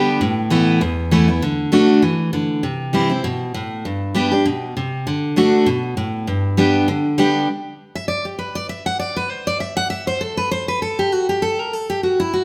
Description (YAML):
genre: bluegrass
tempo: 198 BPM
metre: 4/4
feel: swing 56% on 8ths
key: G major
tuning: A4 = 441 Hz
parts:
  - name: picked steel-string acoustic guitar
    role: solo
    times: 0.0-12.4 s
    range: E2 to F#5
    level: -19 LUFS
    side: equal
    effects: none
room: wet stone room reverb, RT60 1.4 s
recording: band playing live in one room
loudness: -19 LUFS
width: mono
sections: 0.0-7.5 A section; 7.5-12.4 B section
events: steel-string acoustic guitar solo 7.5-12.4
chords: 0.2 Asus2; 1.4 D; 2.6 C; 3.8 G; 5.1 D; 6.3 G; 7.5 N.C.